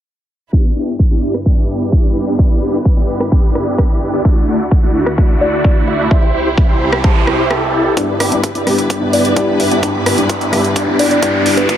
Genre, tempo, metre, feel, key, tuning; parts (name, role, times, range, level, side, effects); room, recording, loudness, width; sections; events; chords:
EDM, festival progressive house; 129 BPM; 4/4; straight; G major; A4 = 441 Hz
warm symphonic string section; sustained chords; 0.5-11.8 s; C2 to B4; -22 LUFS; equal; sidechain pumping
big supersaw lead; riff; 0.5-11.8 s; A3 to D5; -17 LUFS; equal; phaser, sidechain pumping, low-pass filter, dub echo
electronic kick drum; drums; 0.5-11.8 s; -12 LUFS; equal; overdrive, high-pass filter on kick, small room ambience
big-room dance drum kit; drums; 1.3-11.8 s; hi-hat, rim click; -21 LUFS; right 1 dB; overdrive, small room ambience
kalimba; melody; 5.4-11.7 s; B4 to A5; -20 LUFS; equal; dub echo
noise sweep and riser; sound effects; 6.5-11.8 s; -22 LUFS; right 3 dB
dark concert grand piano; accompaniment; 8.0-11.8 s; G2 to B4; -17 LUFS; left 3 dB; sidechain pumping
light reverb; low-pass filter; -11 LUFS; side -10 dB against mid
0.5-8.0 A section; 8.0-11.8 B section
filter sweep 0.5-8.0; noise sweep 6.5-8.0; kick drops out 7.5-8.0; build-up 8.0-11.8; riser 8.0-11.8; filter sweep on supersaw synth 8.0-11.8
0.5 G6; 4.2 Dadd9; 6.1 C; 8.0 G6